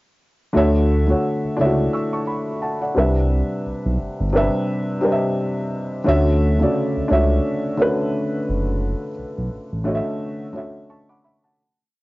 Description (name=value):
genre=R&B, neo-soul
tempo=87 BPM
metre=4/4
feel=swing 57% on 16ths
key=D major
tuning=A4 = 440 Hz
part: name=dark concert grand piano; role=accompaniment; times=0.5-11.8 s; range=C3 to E6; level=-20 LUFS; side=equal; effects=cassette tape
part: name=smooth synth bass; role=bass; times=0.6-10.0 s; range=F#1 to D2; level=-19 LUFS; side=equal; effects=none
room=light reverb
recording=home recording on cassette, nothing above 7.6 kHz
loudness=-18 LUFS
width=side -20 dB against mid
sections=0.5-11.6 A section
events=fade-out 8.8-11.6; grand piano fill 10.5-11.6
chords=0.5 Dmaj9; 3.0 Cmaj9; 6.1 Dmaj9